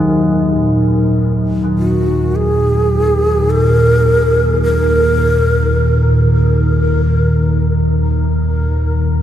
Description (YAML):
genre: dark ambient drone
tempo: free time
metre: none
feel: none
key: Eb minor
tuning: A4 = 440 Hz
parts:
  - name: deep dark ambient pad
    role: sustained chords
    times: 1.2-9.2 s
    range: Eb3 to Bb5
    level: -22 LUFS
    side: left 1 dB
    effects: chorus, built-in reverb
  - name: carillon bells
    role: arpeggios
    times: 0.0-6.7 s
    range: Eb3 to Gb3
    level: -19 LUFS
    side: left 1 dB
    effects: diffuse ambient delay
  - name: deep rumbling drone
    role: drone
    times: 0.0-9.2 s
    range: Eb2 to Bb2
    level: -14 LUFS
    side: equal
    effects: built-in reverb
  - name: breathy mellow long shakuhachi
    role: melody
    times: 1.8-6.3 s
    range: Gb4 to Bb4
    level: -16 LUFS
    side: equal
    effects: diffuse ambient delay
room: wet huge ambient reverb, RT60 7.8 s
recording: lossy compression artefacts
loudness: -11 LUFS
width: side -10 dB against mid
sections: 0.0-9.2 A section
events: fade-in on ambient pad 0.0-9.2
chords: 0.0 Eb5